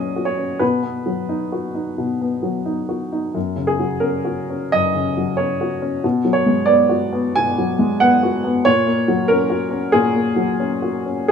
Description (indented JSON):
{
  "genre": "neoclassical minimalist piano",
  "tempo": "90 BPM",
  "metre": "4/4",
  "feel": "uneven beats, rubato",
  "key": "F# major",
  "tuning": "A4 = 441 Hz",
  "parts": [
    { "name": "warm upright piano", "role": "solo", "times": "0.0-11.3 s", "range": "F#2 to G#5", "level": "-17 LUFS", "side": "equal", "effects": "none" }
  ],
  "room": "light reverb",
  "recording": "minimal, uncompressed stereo recording",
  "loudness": "-17 LUFS",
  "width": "side -7 dB against mid",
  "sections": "0.0-11.3 A section",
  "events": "none",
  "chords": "0.0 F#/A#; 0.6 B; 3.4 F#; 6.0 Bm6; 8.7 F#/A#"
}